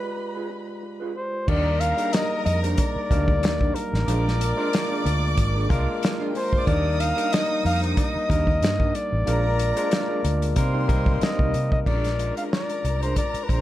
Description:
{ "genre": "lush 1970s-style soul", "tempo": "92 BPM", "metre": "4/4", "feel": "swing 54% on 16ths", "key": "unclear", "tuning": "A4 = 439 Hz", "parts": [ { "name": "warm flugelhorn", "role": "melody", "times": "0.0-13.6 s", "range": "Bb4 to F5", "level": "-27 LUFS", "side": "left 1 dB", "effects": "none" }, { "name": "dark chamber violin section", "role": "second line", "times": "0.0-13.6 s", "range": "Eb4 to Eb6", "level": "-32 LUFS", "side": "equal", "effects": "none" }, { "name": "barky tine electric piano", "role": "accompaniment", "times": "0.0-13.6 s", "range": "F#3 to D5", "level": "-30 LUFS", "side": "left 2 dB", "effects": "auto-pan" }, { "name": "electric guitar through a small old amp", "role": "riff", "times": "0.0-13.6 s", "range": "D4 to C5", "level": "-34 LUFS", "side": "right 4 dB", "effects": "spring reverb" }, { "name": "vintage muted fingered electric bass", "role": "bass", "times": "1.5-13.6 s", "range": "Ab1 to C3", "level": "-24 LUFS", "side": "equal", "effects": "none" }, { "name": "warm soul drum kit", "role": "drums", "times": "1.5-13.6 s", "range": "crash cymbal, hi-hat, kick drum, snare drum", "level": "-25 LUFS", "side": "equal", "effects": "none" } ], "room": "light reverb, small room ambience", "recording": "dark, warm production", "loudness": "-20 LUFS", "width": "side -14 dB against mid", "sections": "0.0-1.5 A section; 1.5-11.9 B section; 11.9-13.6 C section", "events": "break 0.0-1.5", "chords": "0.0 G7b9; 1.5 Ebmaj7; 4.1 Bb7; 6.7 Ebmaj7; 9.3 Bb7; 10.6 Cm7; 11.9 Bb7" }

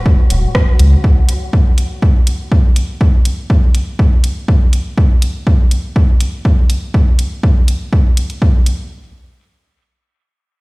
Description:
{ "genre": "dub techno", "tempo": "122 BPM", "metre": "4/4", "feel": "straight", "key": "unclear", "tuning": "A4 = 441 Hz", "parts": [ { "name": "wind-like tuned noise texture", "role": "texture", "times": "0.0-1.1 s", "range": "Gb3 to Gb4", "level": "-30 LUFS", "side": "left 2 dB", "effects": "built-in reverb, sidechain pumping" }, { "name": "electronic kick drum", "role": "drums", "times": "0.1-8.5 s", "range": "none", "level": "-11 LUFS", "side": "equal", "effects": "overdrive" }, { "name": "warm sub bass", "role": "bass", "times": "0.3-1.0 s", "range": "Eb1 to Db2", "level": "-9 LUFS", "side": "equal", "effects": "sidechain pumping" }, { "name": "deep house drum kit", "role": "drums", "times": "0.3-8.8 s", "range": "hi-hat, rim click", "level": "-24 LUFS", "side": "equal", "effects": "overdrive, dub echo" } ], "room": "little or no reverb", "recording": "played on a big sound system in a bare room, stone room reverb", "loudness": "-11 LUFS", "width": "side -26 dB against mid", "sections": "0.0-8.9 A section", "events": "none", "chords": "none" }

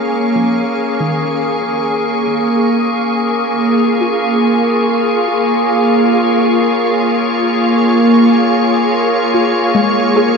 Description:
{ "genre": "ambient", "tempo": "free time", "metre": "none", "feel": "none", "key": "unclear", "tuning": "A4 = 440 Hz", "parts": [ { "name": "soft additive organ-like pad", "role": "sustained chords", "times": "0.0-10.4 s", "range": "A#3 to E#5", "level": "-12 LUFS", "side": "equal", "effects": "ensemble chorus, built-in reverb" }, { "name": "soft round pluck", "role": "arpeggios", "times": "0.0-10.4 s", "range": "D#3 to G#4", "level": "-19 LUFS", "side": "left 2 dB", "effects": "ensemble chorus, ping-pong delay" }, { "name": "pedal harmonium", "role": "drone", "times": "0.0-10.4 s", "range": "A#3", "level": "-26 LUFS", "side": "right 1 dB", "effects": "none" }, { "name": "wind-like tuned noise texture", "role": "texture", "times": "0.0-10.4 s", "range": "C#6", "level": "-25 LUFS", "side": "right 2 dB", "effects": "built-in reverb" } ], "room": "wet concert hall reverb, RT60 2.4 s", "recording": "none", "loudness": "-11 LUFS", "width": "side -5 dB against mid", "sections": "0.0-10.4 A section", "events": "fade-in on synth pluck 0.0-10.4; fade-in on synth texture 0.0-10.4", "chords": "0.0 F#maj7 (rootless)" }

